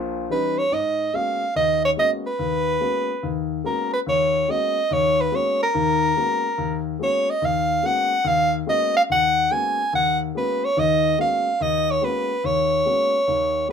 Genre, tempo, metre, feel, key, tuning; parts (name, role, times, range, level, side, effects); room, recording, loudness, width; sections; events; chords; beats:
jazz; 143 BPM; 4/4; swing 65% on 8ths; G# dorian; A4 = 440 Hz
dark concert grand piano; accompaniment; 0.0-13.7 s; A#1 to F#4; -26 LUFS; left 6 dB
breathy soprano saxophone; melody; 0.3-13.7 s; A#4 to G#5; -20 LUFS; right 1 dB
moderate club reverb, RT60 0.5 s; minimal, uncompressed stereo recording; -19 LUFS; side -7 dB against mid
0.7-13.7 A section
0.0 D#7b9; 0.7 G#m11
0.29 | 0.71 1.13 1.55 1.97 | 2.39 2.81 3.22 3.64 | 4.06 4.48 4.90 5.32 | 5.74 6.16 6.57 6.99 | 7.41 7.83 8.25 8.67 | 9.09 9.51 9.93 10.34 | 10.76 11.18 11.60 12.02 | 12.44 12.86 13.28 13.69